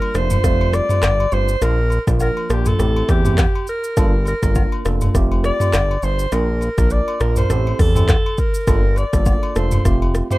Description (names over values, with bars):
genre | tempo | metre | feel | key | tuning
afrobeats | 102 BPM | 4/4 | swing 55% on 16ths | unclear | A4 = 439 Hz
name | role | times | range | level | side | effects
breathy alto saxophone | melody | 0.0-10.4 s | G4 to D5 | -22 LUFS | equal | digital delay
tine electric piano | accompaniment | 0.0-10.4 s | F3 to Bb4 | -25 LUFS | right 3 dB | phaser
agogo bells and woodblock | percussion | 0.0-10.4 s | none | -32 LUFS | left 4 dB | none
fat analog bass | bass | 0.1-10.2 s | F1 to E2 | -18 LUFS | equal | none
afro-pop drum kit | drums | 0.1-10.4 s | handclaps, hi-hat, kick drum, rim click, shaker, toms | -18 LUFS | equal | overdrive
room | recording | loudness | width
little or no reverb | rough home demo mix | -15 LUFS | side -18 dB against mid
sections
0.0-10.4 A section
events
none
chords
0.4 Fadd9; 1.6 Bb; 2.8 Am7; 4.0 Gm7; 5.1 Fadd9; 6.3 Bb; 7.5 Am7; 8.7 Gm7; 9.9 Fadd9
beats
0.44 1.03 | 1.62 2.21 2.79 3.38 | 3.97 4.56 5.15 5.73 | 6.32 6.91 7.50 8.09 | 8.68 9.26 9.85